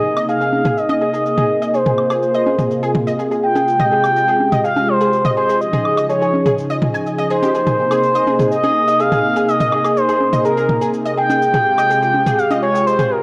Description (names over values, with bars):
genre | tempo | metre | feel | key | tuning
progressive house | 124 BPM | 4/4 | straight | Ab major | A4 = 440 Hz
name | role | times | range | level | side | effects
expressive synth lead | melody | 0.0-13.2 s | Bb4 to G5 | -19 LUFS | equal | chorus, tape echo
warm analog pad | sustained chords | 0.0-13.2 s | C3 to Ab4 | -24 LUFS | equal | chorus
soft round pluck | arpeggios | 0.0-13.1 s | G4 to Ab5 | -24 LUFS | equal | ensemble chorus, tape echo
shaker | drums | 0.2-13.1 s | none | -48 LUFS | equal | low-pass filter on perc, low-pass filter on room
electronic woodblock, congas and toms | percussion | 0.2-13.1 s | none | -23 LUFS | equal | none
room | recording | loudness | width
light reverb | none | -16 LUFS | mono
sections
0.0-13.2 A section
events
filter sweep on analog synth pad 0.0-13.2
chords
0.0 Abadd9; 3.7 Fmadd9; 5.6 Dbadd9; 7.5 Abadd9; 11.4 Fmadd9